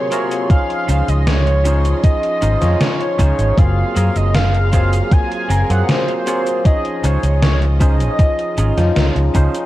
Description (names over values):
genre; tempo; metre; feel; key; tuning
vaporwave; 78 BPM; 4/4; straight; unclear; A4 = 440 Hz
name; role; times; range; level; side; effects
warm velvety synth lead; melody; 0.0-9.3 s; C5 to Ab5; -21 LUFS; equal; chorus, tape echo
barky tine electric piano; accompaniment; 0.0-9.7 s; C3 to Db5; -22 LUFS; equal; medium stereo tremolo, analog chorus
warm studio string section; sustained chords; 0.0-9.7 s; F4 to C6; -32 LUFS; equal; none
clean electric guitar; riff; 0.1-9.6 s; C4 to Db5; -28 LUFS; right 3 dB; lush chorus
gated 80s digital drum machine; drums; 0.1-9.7 s; cabasa, hi-hat, snare drum; -21 LUFS; equal; gated reverb, gated reverb snare, overdrive
electronic kick drum; drums; 0.5-9.5 s; none; -13 LUFS; equal; overdrive
fingered electric bass; bass; 0.9-9.5 s; Gb1 to Gb2; -15 LUFS; equal; tube saturation
room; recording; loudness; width
little or no reverb; cassette tape; -13 LUFS; side -15 dB against mid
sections
0.0-9.7 A section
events
none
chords
0.0 Gbmaj9#11; 0.5 Dbmaj9; 3.6 Gbmaj9#11; 6.7 Dbmaj9